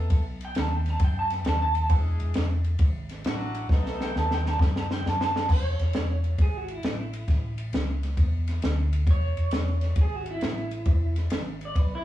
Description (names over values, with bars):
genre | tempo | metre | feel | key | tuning
electric blues shuffle | 134 BPM | 4/4 | swing 67% on 8ths | unclear | A4 = 442 Hz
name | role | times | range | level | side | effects
warm horn section | stabs | 0.0-4.5 s | F#3 to A4 | -35 LUFS | equal | none
vintage muted fingered electric bass | bass | 0.0-12.0 s | E1 to F#2 | -27 LUFS | equal | none
compact cocktail drum kit | drums | 0.1-11.9 s | crash cymbal, kick drum, ride cymbal, snare drum | -26 LUFS | equal | none
electric guitar through a small old amp | melody | 0.4-12.0 s | E4 to A5 | -31 LUFS | right 2 dB | tremolo
room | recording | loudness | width
light reverb | rough rehearsal-room recording, warm saturation, small room ambience | -23 LUFS | side -13 dB against mid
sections
0.0-5.5 A section; 5.5-12.0 A section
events
clean electric guitar solo 0.0-5.5, 5.5-12.0; drum fill 3.7-5.5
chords
0.0 B7; 1.9 E7; 3.7 B7; 5.5 E; 7.3 A; 9.1 E